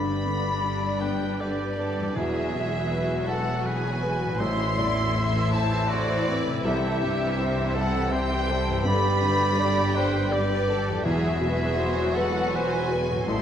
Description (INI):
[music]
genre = cinematic, emotional film score for orchestra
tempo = 81 BPM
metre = 3/4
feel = rubato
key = unclear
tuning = A4 = 439 Hz
[part]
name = clear studio violin section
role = melody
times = 0.0-13.4 s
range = D5 to C6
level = -32 LUFS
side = left 2 dB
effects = none
[part]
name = mellow hollow small flute group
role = second line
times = 0.0-13.4 s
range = D5 to C6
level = -32 LUFS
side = equal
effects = none
[part]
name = warm oboe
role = second line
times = 0.0-13.4 s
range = F#4 to E5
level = -34 LUFS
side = right 2 dB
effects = none
[part]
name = felt-muted upright piano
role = accompaniment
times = 0.0-13.4 s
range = A1 to F#5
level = -31 LUFS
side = left 1 dB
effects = none
[part]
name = rich symphonic viola section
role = accompaniment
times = 0.0-13.4 s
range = C3 to G4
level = -32 LUFS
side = right 1 dB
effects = none
[part]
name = mellow French horn section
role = sustained chords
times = 0.0-13.4 s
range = F#3 to G4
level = -34 LUFS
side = left 3 dB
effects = none
[part]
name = concert harp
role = arpeggios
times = 0.0-13.4 s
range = E2 to B5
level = -35 LUFS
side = left 3 dB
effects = none
[part]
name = rich symphonic cello section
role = bass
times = 0.0-13.4 s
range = E2 to C3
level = -31 LUFS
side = right 2 dB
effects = none
[part]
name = rich symphonic double bass section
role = bass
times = 0.0-13.4 s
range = E1 to C2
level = -32 LUFS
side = right 2 dB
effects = none
[part]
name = warm symphonic violin section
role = second line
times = 0.6-13.4 s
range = G4 to E5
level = -32 LUFS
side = left 1 dB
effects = none
[sound]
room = moderate scoring stage reverb, RT60 1.8 s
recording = vinyl crackle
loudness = -22 LUFS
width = side -9 dB against mid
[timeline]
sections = 0.0-13.4 A section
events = none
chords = 0.0 G; 2.2 Eadd9; 4.4 Am; 6.6 C; 8.9 G; 11.1 Eadd9